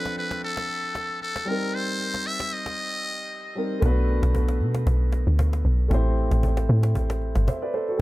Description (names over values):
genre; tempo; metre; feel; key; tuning
amapiano; 115 BPM; 4/4; swing 55% on 16ths; B phrygian; A4 = 440 Hz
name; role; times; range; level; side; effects
trumpet with metal mute; melody; 0.0-3.6 s; A4 to E5; -29 LUFS; left 1 dB; dub echo
warm concert grand piano; accompaniment; 0.0-8.0 s; F3 to E5; -29 LUFS; equal; dub echo
cajon; drums; 0.1-7.9 s; none; -32 LUFS; equal; none
deep log drum bass; bass; 3.8-7.5 s; G1 to B2; -20 LUFS; equal; none
room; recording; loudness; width
small room reverb; echo-heavy mix; -22 LUFS; side -18 dB against mid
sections
0.0-3.8 A section; 3.8-8.0 B section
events
drop 3.8-8.0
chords
0.0 Dm7; 1.5 Cm7; 3.8 Bm7; 5.9 Am7